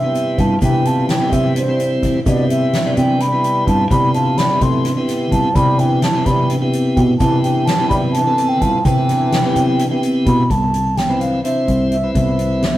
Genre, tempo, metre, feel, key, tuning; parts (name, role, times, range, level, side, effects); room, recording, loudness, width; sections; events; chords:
progressive instrumental, band music in an uneven meter; 255 BPM (eighths); 7/8; straight; C major; A4 = 440 Hz
baroque flute; melody; 0.0-12.8 s; C5 to C6; -19 LUFS; right 1 dB
clear trombone; second line; 0.0-10.3 s; G2 to A3; -25 LUFS; left 4 dB
tonewheel organ; accompaniment; 0.0-12.8 s; C3 to C5; -20 LUFS; equal; slow rotary speaker
bell-like tine electric piano; arpeggios; 0.0-12.8 s; B3 to E4; -26 LUFS; right 2 dB
overdriven fingered electric bass; bass; 0.0-12.8 s; C2 to G3; -19 LUFS; equal
egg shaker; percussion; 0.1-10.2 s; -44 LUFS; left 5 dB
soft-mallet drum kit; drums; 0.2-12.7 s; hi-hat, kick drum, snare drum; -22 LUFS; left 1 dB
moderate stone room reverb, RT60 1.2 s; rough rehearsal-room recording; -13 LUFS; side -14 dB against mid
0.0-10.5 A section; 10.5-12.8 B section
0.0 Cmaj7; 3.9 Em; 10.5 Cmaj7